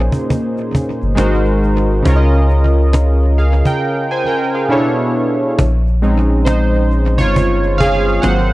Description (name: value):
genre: lo-fi hip hop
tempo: 68 BPM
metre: 4/4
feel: swing 64% on 16ths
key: Bb dorian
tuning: A4 = 436 Hz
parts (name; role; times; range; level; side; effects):
- warm analog keys; accompaniment; 0.0-8.5 s; Bb2 to Ab5; -15 LUFS; right 1 dB; chorus
- soft dub sub bass; bass; 0.0-8.5 s; G1 to Db2; -13 LUFS; equal; none
- cajon; drums; 0.1-8.5 s; none; -20 LUFS; equal; vintage 12-bit sampler grit, analog delay
room: light reverb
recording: echo-heavy mix, cassette tape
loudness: -12 LUFS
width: side -18 dB against mid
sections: 0.0-5.6 A section; 5.6-8.5 B section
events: break 3.8-5.6; synth keys solo 5.6-8.5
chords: 0.0 Bbm11; 1.2 Ab7; 2.1 Db6; 4.7 Bm11; 5.6 Bbm11